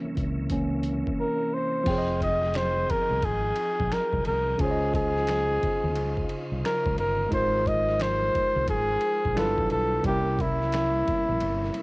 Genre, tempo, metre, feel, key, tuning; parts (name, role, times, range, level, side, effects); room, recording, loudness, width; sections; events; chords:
R&B, neo-soul; 88 BPM; 4/4; swing 63% on 16ths; F minor; A4 = 441 Hz
tine electric piano; accompaniment; 0.0-11.8 s; C3 to G5; -30 LUFS; right 1 dB; fast stereo tremolo
tonewheel organ; sustained chords; 0.0-11.8 s; C3 to G5; -39 LUFS; equal; chorus vibrato, fast rotary speaker
congas; percussion; 0.0-11.7 s; -42 LUFS; equal
fretless electric bass; bass; 0.2-11.7 s; F1 to Eb2; -30 LUFS; equal
dusty soul sampler-style drum kit; drums; 0.2-11.8 s; crash cymbal, finger snaps, hi-hat, kick drum, ride cymbal, snare drum; -33 LUFS; equal; cassette tape
mellow flugelhorn; melody; 1.2-11.8 s; E4 to Eb5; -26 LUFS; equal; cassette tape
light reverb; home recording on cassette; -23 LUFS; side -26 dB against mid
0.0-1.9 A section; 1.9-11.8 B section
tine electric piano solo 0.0-1.9; drums muted 1.2-1.9; break 11.4-11.8
0.0 C7b9; 1.9 Fm9; 4.6 Dbmaj9; 7.3 Ab69; 9.4 G13; 10.0 C7b9